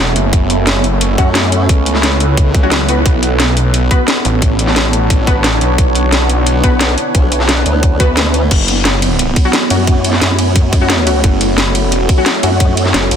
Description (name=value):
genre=dark technical drum and bass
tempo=176 BPM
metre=4/4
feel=straight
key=F# minor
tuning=A4 = 441 Hz
part: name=deep dark ambient pad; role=sustained chords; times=0.0-13.2 s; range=A3 to C#5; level=-20 LUFS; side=equal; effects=chorus, built-in reverb, sidechain pumping
part: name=snarling distorted saw bass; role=bass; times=0.0-13.1 s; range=E1 to C#2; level=-15 LUFS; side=equal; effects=distortion, tube saturation, sidechain pumping
part: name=granular cloud pad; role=texture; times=0.0-13.2 s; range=B3 to C#5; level=-20 LUFS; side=right 2 dB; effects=built-in reverb, sidechain pumping
part: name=drum and bass drum kit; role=drums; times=0.2-13.2 s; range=crash cymbal, hi-hat, ride cymbal, snare drum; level=-16 LUFS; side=equal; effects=none
part: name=electronic kick drum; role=drums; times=0.3-12.7 s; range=none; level=-12 LUFS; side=equal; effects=none
part: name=orchestra-hit-like synth stab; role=stabs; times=1.2-13.2 s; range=F#3 to B4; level=-20 LUFS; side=left 3 dB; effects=built-in reverb, digital delay
part: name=formant-sweep wobble bass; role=bass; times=1.2-1.7, 6.6-13.2 s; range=A1 to F#2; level=-15 LUFS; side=equal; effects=chorus, tube saturation
room=light reverb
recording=dense, heavily limited modern master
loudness=-10 LUFS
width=side -8 dB against mid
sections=0.0-8.5 A section; 8.5-13.2 A section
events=drop 0.0-8.5, 8.5-13.2; kick drops out 8.2-8.5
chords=0.0 F#m; 3.1 Bmadd9; 8.5 F#m